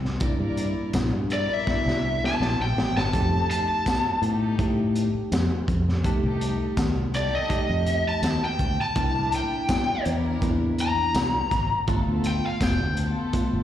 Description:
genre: straight-eighth soul blues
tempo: 82 BPM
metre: 4/4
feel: straight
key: C mixolydian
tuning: A4 = 440 Hz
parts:
  - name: fingered electric bass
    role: bass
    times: 0.0-13.6 s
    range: F1 to A2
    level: -26 LUFS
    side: left 1 dB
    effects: none
  - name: crunchy breakbeat drum kit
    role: drums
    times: 0.1-13.5 s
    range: hi-hat, kick drum, snare drum, tambourine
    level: -28 LUFS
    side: left 1 dB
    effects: none
  - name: bell-like tine electric piano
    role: accompaniment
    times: 0.2-13.6 s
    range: A3 to G4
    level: -31 LUFS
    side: right 2 dB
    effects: medium stereo tremolo, slapback echo
  - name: warm chamber string section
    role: sustained chords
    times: 0.2-13.6 s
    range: B3 to D5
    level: -36 LUFS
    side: left 3 dB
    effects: none
  - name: lead guitar through a small cranked amp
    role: melody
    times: 1.3-13.0 s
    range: D5 to Bb5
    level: -26 LUFS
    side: left 1 dB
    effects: overdrive, slapback echo
room: light reverb, small room ambience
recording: live gig heard through the venue's PA, recital hall reverb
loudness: -22 LUFS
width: side -11 dB against mid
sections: 0.0-13.6 A section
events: lead electric guitar solo 0.0-13.6; drum fill 1.7-3.1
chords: 0.0 C9; 3.1 F9; 9.0 C9; 11.9 G9

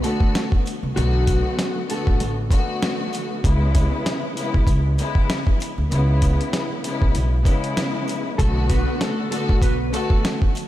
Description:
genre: hip hop, boom-bap hip-hop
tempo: 97 BPM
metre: 4/4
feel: swing 55% on 16ths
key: B dorian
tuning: A4 = 439 Hz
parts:
  - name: mellow electric guitar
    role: melody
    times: 0.0-2.4, 8.4-10.4 s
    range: F#3 to B4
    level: -28 LUFS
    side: right 2 dB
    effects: tape echo
  - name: warm studio string section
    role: accompaniment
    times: 0.0-10.5 s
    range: C#3 to F#4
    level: -25 LUFS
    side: left 2 dB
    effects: cassette tape
  - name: dusty soul sampler-style drum kit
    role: drums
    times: 0.0-10.7 s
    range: hi-hat, kick drum, snare drum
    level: -21 LUFS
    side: equal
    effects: none
  - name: sleigh bells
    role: percussion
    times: 0.0-10.7 s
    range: none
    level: -42 LUFS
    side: right 5 dB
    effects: none
  - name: upright bass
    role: bass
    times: 0.8-9.9 s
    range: A1 to D2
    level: -21 LUFS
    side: equal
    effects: none
  - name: clear horn section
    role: stabs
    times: 8.7-10.2 s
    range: B3 to B4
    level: -33 LUFS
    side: equal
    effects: tape echo
room: light reverb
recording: none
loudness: -18 LUFS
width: side -14 dB against mid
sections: 0.0-10.7 A section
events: none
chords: 0.0 Bm7; 3.4 C#m7; 8.4 Bm7

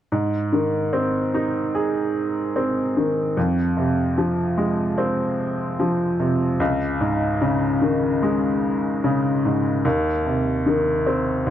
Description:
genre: pop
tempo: 74 BPM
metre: 4/4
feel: straight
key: Ab major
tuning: A4 = 440 Hz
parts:
  - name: bright upright piano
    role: accompaniment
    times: 0.1-11.5 s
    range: Db2 to Ab4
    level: -19 LUFS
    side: equal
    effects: none
room: light reverb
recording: dark, warm production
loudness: -19 LUFS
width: side -11 dB against mid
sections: 0.1-11.5 A section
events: none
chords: 0.1 Ab; 3.4 Fm; 6.6 Dbsus2; 9.8 Cm/Eb

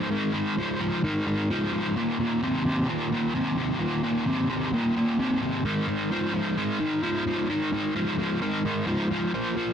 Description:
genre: rock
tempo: 130 BPM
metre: 4/4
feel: straight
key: unclear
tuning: A4 = 437 Hz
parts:
  - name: overdriven electric guitar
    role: solo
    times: 0.0-9.7 s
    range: Eb2 to F3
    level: -24 LUFS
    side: equal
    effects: harmonic tremolo
room: light reverb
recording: dry, close 1970s-style studio recording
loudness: -24 LUFS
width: side -8 dB against mid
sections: 0.0-9.7 A section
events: none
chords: 0.0 Ab5; 2.0 Eb5; 5.6 Ab5

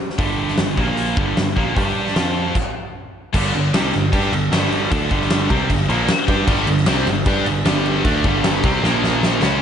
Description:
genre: hard rock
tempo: 153 BPM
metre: 4/4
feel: straight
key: unclear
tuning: A4 = 440 Hz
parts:
  - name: huge arena drum kit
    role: drums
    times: 0.1-9.5 s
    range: crash cymbal, hi-hat, kick drum, snare drum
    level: -20 LUFS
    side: equal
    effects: none
  - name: cranked stack guitar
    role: riff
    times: 0.2-9.6 s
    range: G2 to G4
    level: -23 LUFS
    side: right 7 dB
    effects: overdrive, slapback echo
  - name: scooped high-gain guitar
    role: riff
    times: 0.2-9.6 s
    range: G2 to G4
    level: -23 LUFS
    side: left 8 dB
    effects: distortion
  - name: picked electric bass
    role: bass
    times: 0.2-9.6 s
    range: G1 to G2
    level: -23 LUFS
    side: equal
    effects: none
  - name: tight distorted guitar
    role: riff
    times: 6.5-9.6 s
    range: G2 to G4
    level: -24 LUFS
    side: equal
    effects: distortion, slapback echo
room: moderate lush hall reverb, RT60 2.0 s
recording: big arena sound, nothing above 10.8 kHz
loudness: -16 LUFS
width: side -8 dB against mid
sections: 0.0-3.3 A section; 3.3-9.6 B section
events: stop 2.6-3.3; drum fill 8.8-9.6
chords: 0.0 G5; 0.8 Bb5; 1.2 G5; 2.2 F5; 2.6 N.C.; 3.3 G5; 8.8 Bb5; 9.4 C#5

